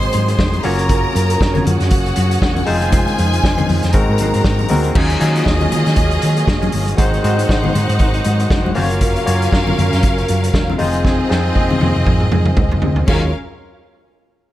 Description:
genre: disco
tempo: 118 BPM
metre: 4/4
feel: swing 56% on 16ths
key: Eb dorian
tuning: A4 = 439 Hz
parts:
  - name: clear studio string section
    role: second line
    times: 0.0-13.3 s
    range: Bb3 to C6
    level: -22 LUFS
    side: equal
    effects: none
  - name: barky tine electric piano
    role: accompaniment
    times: 0.0-13.3 s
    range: Gb3 to Db5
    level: -22 LUFS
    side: left 4 dB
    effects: overdrive, low-pass filter
  - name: mellow electric guitar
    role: accompaniment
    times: 0.0-13.3 s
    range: Gb3 to Db5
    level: -26 LUFS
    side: right 3 dB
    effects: phaser, low-pass filter
  - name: overdriven tonewheel organ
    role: sustained chords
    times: 0.0-13.3 s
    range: Db3 to F5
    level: -26 LUFS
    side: equal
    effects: fast rotary speaker, low-pass filter
  - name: hollow-body short-scale fingered electric bass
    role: bass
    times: 0.0-13.3 s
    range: Fb1 to Eb3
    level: -18 LUFS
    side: equal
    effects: none
  - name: vintage drum kit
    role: drums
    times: 0.0-13.2 s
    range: crash cymbal, hi-hat, kick drum, snare drum, toms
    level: -18 LUFS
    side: equal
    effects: none
  - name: congas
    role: percussion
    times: 0.1-13.3 s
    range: none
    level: -25 LUFS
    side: left 4 dB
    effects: none
room: studio reverb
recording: none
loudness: -13 LUFS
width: side -14 dB against mid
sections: 0.0-5.0 A section; 5.0-13.1 B section; 13.1-14.5 C section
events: filter sweep 5.0-13.1; drum fill 11.0-13.1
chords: 0.0 Ab7; 0.6 Gbmaj7; 2.7 Fm7; 3.9 Ab9; 5.0 Ebm11; 7.0 Ab7; 8.8 Gbmaj7; 10.8 Fm7; 13.1 Ebm11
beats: 0.39 | 0.90 1.41 1.91 2.42 | 2.92 3.43 3.94 4.45 | 4.95 5.46 5.97 6.47 | 6.98 7.49 8.00 8.50 | 9.01 9.52 10.03 10.54 | 11.04 11.55 12.06 12.57 | 13.08

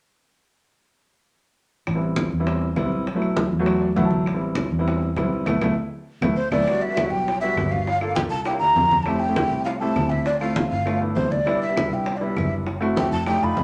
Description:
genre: Afro-Cuban jazz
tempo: 200 BPM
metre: 4/4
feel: straight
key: E minor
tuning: A4 = 440 Hz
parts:
  - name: warm concert grand piano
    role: accompaniment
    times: 1.9-13.6 s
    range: F#3 to A5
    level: -27 LUFS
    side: equal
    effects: none
  - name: fingered electric bass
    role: bass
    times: 1.9-13.6 s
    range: E1 to F2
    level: -30 LUFS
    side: equal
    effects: none
  - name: bongos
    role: percussion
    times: 1.9-13.6 s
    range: none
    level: -33 LUFS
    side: equal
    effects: none
  - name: claves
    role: percussion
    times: 1.9-13.4 s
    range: none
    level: -40 LUFS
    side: equal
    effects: none
  - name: congas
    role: percussion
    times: 1.9-13.6 s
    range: none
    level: -31 LUFS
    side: equal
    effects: none
  - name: breathy mellow jazz flute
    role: melody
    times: 6.4-13.6 s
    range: C5 to B5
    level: -25 LUFS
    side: equal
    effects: none
room: wet studio reverb, RT60 0.7 s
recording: none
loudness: -22 LUFS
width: mono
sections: 1.9-6.7 A section; 6.7-13.6 B section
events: grand piano fill 3.7-4.3; band accent 5.5-6.7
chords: 1.9 Am7; 3.1 B7sus4; 4.3 Am7; 5.5 B7sus4; 6.7 Em7; 7.9 Gm7; 8.5 C7; 9.1 Fmaj9; 10.3 Dm7; 10.9 G7; 11.5 Cmaj7; 12.7 F#m7b5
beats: | 1.88 2.18 2.48 2.78 | 3.08 3.38 3.67 3.97 | 4.27 4.57 4.87 5.17 | 5.47 5.77 6.07 6.37 | 6.67 6.97 7.27 7.57 | 7.87 8.17 8.47 8.77 | 9.07 9.37 9.67 9.97 | 10.27 10.57 10.87 11.17 | 11.47 11.77 12.07 12.37 | 12.67 12.97 13.27 13.57

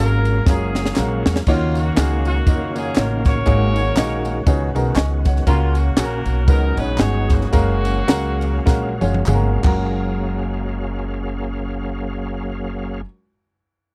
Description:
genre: uptempo gospel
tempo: 90-120 BPM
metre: 4/4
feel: swing 58% on 8ths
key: F# major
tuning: A4 = 442 Hz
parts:
  - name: warm horn section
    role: melody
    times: 0.0-9.3 s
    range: A#3 to C#5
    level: -29 LUFS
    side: equal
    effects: none
  - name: clear grand piano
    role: accompaniment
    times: 0.0-13.0 s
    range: F#2 to C#6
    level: -26 LUFS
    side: equal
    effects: none
  - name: overdriven tonewheel organ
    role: sustained chords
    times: 0.0-13.0 s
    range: C#3 to E#5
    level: -31 LUFS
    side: equal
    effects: chorus vibrato, fast rotary speaker
  - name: upright bass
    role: bass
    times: 0.0-13.0 s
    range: F#1 to E#2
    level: -23 LUFS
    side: equal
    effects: none
  - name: crisp fusion drum kit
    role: drums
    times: 0.3-9.8 s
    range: crash cymbal, kick drum, ride cymbal, snare drum, toms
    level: -19 LUFS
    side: equal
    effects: none
  - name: tambourine and handclaps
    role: percussion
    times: 0.3-10.3 s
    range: none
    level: -37 LUFS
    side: equal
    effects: none
room: little or no reverb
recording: dry, close 1970s-style studio recording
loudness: -19 LUFS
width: mono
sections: 0.0-1.5 A section; 1.5-9.9 B section; 9.9-13.9 C section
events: drum fill 0.5-1.5, 8.7-9.9; grand piano fill 4.7-5.5; slowing down 5.5-9.9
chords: 0.0 F#maj9; 1.5 D#m9; 3.5 G#9sus4; 4.5 C#9sus4; 5.5 F#/C#; 6.5 C#9sus4; 7.5 F#maj9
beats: 0.47 0.97 | 1.47 1.97 2.47 2.97 | 3.47 3.97 4.47 4.97 | 5.46 5.97 6.48 7.00 | 7.53 8.09 8.66 9.27 | 9.92 10.59 11.25 11.92 | 12.58

